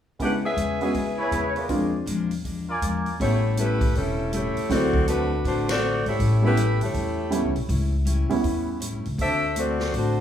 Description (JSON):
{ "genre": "jazz, big band swing", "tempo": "160 BPM", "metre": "4/4", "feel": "swing 64% on 8ths", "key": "A mixolydian", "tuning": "A4 = 440 Hz", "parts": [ { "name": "warm saxophone section", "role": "melody", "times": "0.2-10.2 s", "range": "G3 to F#5", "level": "-25 LUFS", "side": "left 1 dB", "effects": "none" }, { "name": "clear upright piano", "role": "accompaniment", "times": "0.2-8.8 s", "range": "F#3 to F#4", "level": "-27 LUFS", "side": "right 3 dB", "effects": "none" }, { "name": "picked steel-string acoustic guitar", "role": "accompaniment", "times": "0.2-10.2 s", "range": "A2 to F#4", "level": "-32 LUFS", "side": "left 5 dB", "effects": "none" }, { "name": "swinging big-band drum kit", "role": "drums", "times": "0.2-10.0 s", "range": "hi-hat, kick drum, ride cymbal, snare drum", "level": "-31 LUFS", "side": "equal", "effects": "none" }, { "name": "upright bass", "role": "bass", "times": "0.6-10.2 s", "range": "E1 to G2", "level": "-26 LUFS", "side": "left 1 dB", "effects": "none" }, { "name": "warm trumpet section", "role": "stabs", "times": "1.2-3.2 s", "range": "E4 to G#5", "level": "-28 LUFS", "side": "right 1 dB", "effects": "none" } ], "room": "moderate digital room reverb, RT60 1.1 s, studio ambience", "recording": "rough home demo mix, small room reverb", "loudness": "-21 LUFS", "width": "side -9 dB against mid", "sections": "0.2-3.2 A section; 3.2-10.2 B section", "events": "band accent 5.6", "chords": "0.2 C#m7; 1.7 Bb7; 3.2 A7; 4.7 D7; 6.2 A7; 9.2 D7" }